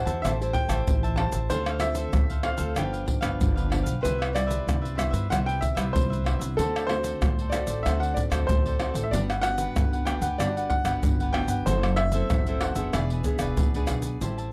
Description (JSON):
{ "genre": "samba and choro", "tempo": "94 BPM", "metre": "4/4", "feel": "straight", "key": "unclear", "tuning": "A4 = 440 Hz", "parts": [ { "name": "clear grand piano", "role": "melody", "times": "0.0-13.9 s", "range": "A4 to A5", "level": "-32 LUFS", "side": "equal", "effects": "none" }, { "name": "cavaquinho", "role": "accompaniment", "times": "0.0-14.5 s", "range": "D4 to A5", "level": "-39 LUFS", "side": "equal", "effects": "none" }, { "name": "nylon-string guitar", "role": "accompaniment", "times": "0.0-14.5 s", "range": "G2 to C5", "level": "-35 LUFS", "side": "equal", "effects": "none" }, { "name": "upright bass", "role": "bass", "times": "0.1-14.5 s", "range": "E1 to G2", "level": "-31 LUFS", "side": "equal", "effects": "none" }, { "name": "egg shaker, pandeiro, surdo and tamborim", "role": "percussion", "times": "0.1-14.5 s", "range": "none", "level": "-30 LUFS", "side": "equal", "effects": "none" } ], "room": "little or no reverb", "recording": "dry, close 1970s-style studio recording", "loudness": "-26 LUFS", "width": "mono", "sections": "0.0-14.2 A section", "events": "none", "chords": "0.0 Am7; 1.5 Dm7; 2.8 G7; 4.0 Cmaj7; 6.6 D7; 9.1 Gmaj7; 11.7 F#m7b5; 12.9 E7", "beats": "0.24 0.88 | 1.51 2.15 2.78 3.41 | 4.05 4.68 5.32 5.95 | 6.59 7.22 7.86 8.49 | 9.13 9.76 10.40 11.03 | 11.67 12.30 12.94 13.58 | 14.22" }